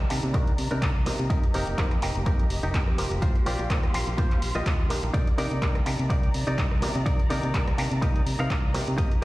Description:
filtered disco house; 125 BPM; 4/4; swing 55% on 16ths; C minor; A4 = 440 Hz
auto-wah clav; accompaniment; 0.0-9.2 s; Eb3 to D5; -34 LUFS; right 1 dB; overdrive, phaser, sidechain pumping, low-pass filter
warm symphonic string section; sustained chords; 0.0-9.2 s; Eb3 to C6; -36 LUFS; left 1 dB; sidechain pumping, low-pass filter
modern bright fingered electric bass; bass; 0.0-9.1 s; F1 to C3; -29 LUFS; equal; sidechain pumping, low-pass filter
punchy analog drum machine; drums; 0.1-9.2 s; handclaps, hi-hat, rim click; -34 LUFS; equal; sidechain pumping on hats
direct-recorded clean electric guitar; riff; 0.3-9.2 s; D4 to F5; -34 LUFS; equal; sidechain pumping, low-pass filter
electronic kick drum; drums; 0.3-9.1 s; -25 LUFS; equal
digital ambience; played on a big sound system in a bare room, large studio reverb; -23 LUFS; side -18 dB against mid
0.0-9.2 A section
filter sweep 0.0-9.2
0.0 Cm9; 1.3 F9sus4; 3.2 Eb69; 5.1 Cm9

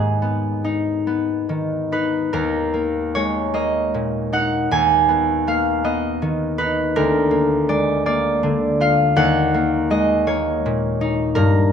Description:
classical, solo harp piece; 45-55 BPM (dotted quarters); 6/8; rubato; Eb minor; A4 = 440 Hz
concert harp; solo; 0.0-11.7 s; D2 to Ab5; -17 LUFS; equal
little or no reverb; close, detailed microphones; -17 LUFS; side -7 dB against mid
0.0-2.3 A section; 2.3-11.7 B section
0.0 G#m; 2.3 Eb5; 4.7 Abm/Eb; 7.0 Bb7/D; 9.2 Ebm

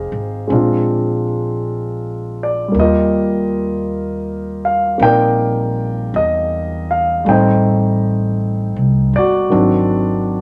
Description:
jazz ballad; 53 BPM; 4/4; swing 67% on 8ths; A4 = 440 Hz
warm grand piano; accompaniment; 0.0-10.4 s; Eb3 to G5; -18 LUFS; equal
upright bass; bass; 0.0-10.4 s; G1 to E2; -22 LUFS; equal
wet studio reverb, RT60 0.7 s; -16 LUFS; mono
0.0-10.4 A section
0.0 Fm9; 0.5 Bb9; 2.7 Ebmaj9; 7.3 Am7b5; 9.5 Ab7#11

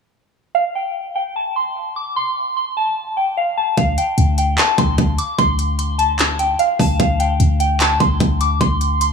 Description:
hip hop, trap; 149 BPM; 4/4; half-time; D minor; A4 = 436 Hz
soft synth bell; melody; 0.5-9.1 s; F5 to D6; -18 LUFS; equal; chorus, phaser, low-pass filter, diffuse ambient delay
clean 808-style bass; bass; 3.8-9.1 s; D2; -18 LUFS; equal
trap drum kit; drums; 3.8-9.1 s; handclaps, hi-hat, kick drum; -18 LUFS; equal
moderate plate reverb, RT60 1.9 s; dreamy mix soaked in reverb; -15 LUFS; side -5 dB against mid
0.6-3.8 A section; 3.8-9.1 B section
0.6 N.C.; 3.8 D5

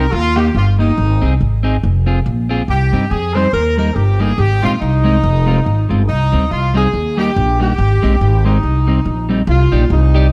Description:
ska; 141 BPM; 4/4; swing 58% on 8ths; C minor; A4 = 441 Hz
warm horn section; melody; 0.0-10.3 s; Eb4 to C5; -21 LUFS; equal; slapback echo
clean electric guitar; accompaniment; 0.0-10.3 s; G3 to D5; -22 LUFS; equal; analog chorus
upright bass; bass; 0.0-10.3 s; F1 to G2; -16 LUFS; equal
small room reverb; dark, warm production; -14 LUFS; mono
0.0-9.5 A section
0.1 Eb; 1.0 Ab; 1.8 Fm; 2.7 Cm; 3.5 Eb; 4.4 Ab; 5.2 Fm; 6.1 Cm; 6.9 Eb; 7.8 Ab; 8.6 Cm; 9.5 Cmadd9

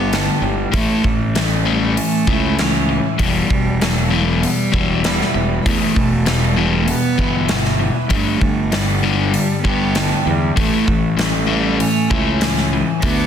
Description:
quiet-loud alternative rock; 98 BPM; 4/4; straight; A4 = 440 Hz
clear cello; melody; 0.0-13.3 s; F#3 to B3; -22 LUFS; right 5 dB; slapback echo
electric guitar through a small old amp; arpeggios; 0.0-13.3 s; E2 to G4; -25 LUFS; right 4 dB; lush chorus
crunchy overdriven guitar; riff; 0.0-13.3 s; E2 to D4; -20 LUFS; left 7 dB
fuzz fingered electric bass; bass; 0.0-13.3 s; E1 to E2; -21 LUFS; right 1 dB; overdrive
big rock drum kit; drums; 0.1-13.2 s; hi-hat, kick drum, snare drum; -20 LUFS; equal
light reverb; dense, heavily limited modern master; -14 LUFS; side -8 dB against mid
0.0-13.3 A section
0.0 G; 0.7 A; 3.2 Em; 8.1 G; 10.6 A

